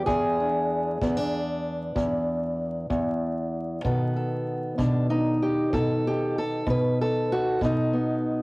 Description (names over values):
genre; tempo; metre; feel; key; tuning
acoustic country blues, solo or duo; 64 BPM (dotted quarters); 12/8; straight; unclear; A4 = 441 Hz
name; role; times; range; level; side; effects
fingerpicked acoustic archtop guitar; melody; 0.0-8.4 s; E2 to B4; -23 LUFS; equal; cassette tape
kick drum; drums; 0.1-7.8 s; none; -34 LUFS; equal; none
room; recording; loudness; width
light reverb, studio reverb; home recording on cassette, vinyl crackle; -23 LUFS; side -24 dB against mid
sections
0.0-8.4 A section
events
none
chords
0.0 E7; 3.8 B7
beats
| 0.07 1.01 1.95 2.89 | 3.84 4.78 5.72 6.67 | 7.61